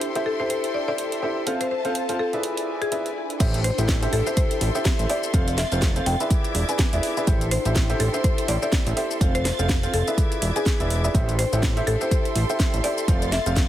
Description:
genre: piano house.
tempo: 124 BPM.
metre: 4/4.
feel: swing 58% on 16ths.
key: A minor.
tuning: A4 = 440 Hz.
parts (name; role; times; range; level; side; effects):
buzzing marimba with hard mallets; melody; 0.0-13.7 s; G#4 to G5; -29 LUFS; left 3 dB; digital delay.
warm studio string section; sustained chords; 0.0-13.7 s; E4 to A6; -33 LUFS; left 1 dB; sidechain pumping.
clear upright piano; riff; 0.0-13.6 s; C4 to G#5; -27 LUFS; right 1 dB; sidechain pumping, digital delay.
house drum kit; drums; 0.0-13.7 s; crash cymbal, hi-hat, shaker, snare drum; -29 LUFS; equal; studio ambience.
ethereal airy pad; texture; 0.0-13.7 s; D4 to E5; -34 LUFS; equal; ensemble chorus, built-in reverb, sidechain pumping.
fat analog bass; bass; 3.4-13.7 s; E1 to A1; -24 LUFS; equal; sidechain pumping.
electronic kick drum; drums; 3.4-13.7 s; none; -22 LUFS; equal; studio ambience.
room: light reverb.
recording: heavily compressed radio sound.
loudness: -20 LUFS.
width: side -12 dB against mid.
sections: 0.0-3.4 A section; 3.4-13.7 B section.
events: filter sweep on string section 0.0-3.4; drop 3.4-13.7.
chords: 0.0 Am7; 1.5 F; 2.4 E7; 3.4 Am7; 5.3 F; 6.3 E7; 7.3 Am7; 9.2 F; 10.2 E7; 11.1 Am7; 13.1 F.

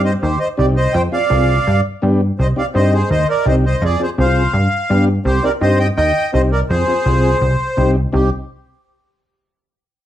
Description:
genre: latin, cumbia.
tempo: 167 BPM.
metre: 4/4.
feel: straight.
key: C minor.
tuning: A4 = 440 Hz.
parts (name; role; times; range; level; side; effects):
accordion; melody; 0.0-8.3 s; G4 to G5; -17 LUFS; right 1 dB; light tremolo tuning, plate reverb.
combo organ; accompaniment; 0.0-8.3 s; B3 to Ab4; -20 LUFS; left 2 dB; none.
plucky analog bass; bass; 0.0-8.3 s; C2 to G2; -16 LUFS; equal; none.
room: wet small room reverb, RT60 0.5 s.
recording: heard from further back in the room.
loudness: -13 LUFS.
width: side -12 dB against mid.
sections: 0.0-8.1 A section; 8.1-9.6 B section.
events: none.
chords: 0.0 Cm; 0.9 Fm; 1.7 G; 2.4 Cm; 3.8 Fm; 4.5 G; 5.3 Cm; 6.7 Fm; 7.4 Cm.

